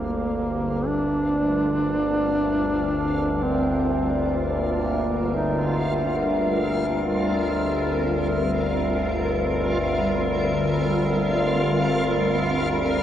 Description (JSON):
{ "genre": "dark ambient drone", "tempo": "free time", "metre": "none", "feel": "none", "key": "G minor", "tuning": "A4 = 440 Hz", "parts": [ { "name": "mellow duduk", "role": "melody", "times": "0.0-6.0 s", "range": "Bb3 to Eb4", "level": "-26 LUFS", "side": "equal", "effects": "tape echo" }, { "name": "granular cloud pad", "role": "sustained chords", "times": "0.0-13.0 s", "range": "G3 to Bb4", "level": "-27 LUFS", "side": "equal", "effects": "built-in reverb" }, { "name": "gamelan-type bronze metallophone", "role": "arpeggios", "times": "0.0-13.0 s", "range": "G3 to F4", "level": "-35 LUFS", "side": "left 2 dB", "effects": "none" }, { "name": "overtone-sweeping drone", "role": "drone", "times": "0.0-13.0 s", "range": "G1 to D2", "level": "-24 LUFS", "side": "left 1 dB", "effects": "chorus, built-in reverb, phaser" }, { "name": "backwards swelling texture", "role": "texture", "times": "0.0-13.0 s", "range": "F4 to F5", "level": "-32 LUFS", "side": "equal", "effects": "built-in reverb" } ], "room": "wet cathedral reverb, RT60 4.8 s", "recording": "worn, warbling old tape, cassette tape, warbly pitch drift", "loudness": "-21 LUFS", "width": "side -10 dB against mid", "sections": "0.0-13.0 A section", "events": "fade-in on ambient pad 0.0-13.0; fade-in on synth texture 0.0-13.0", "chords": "0.0 Gm" }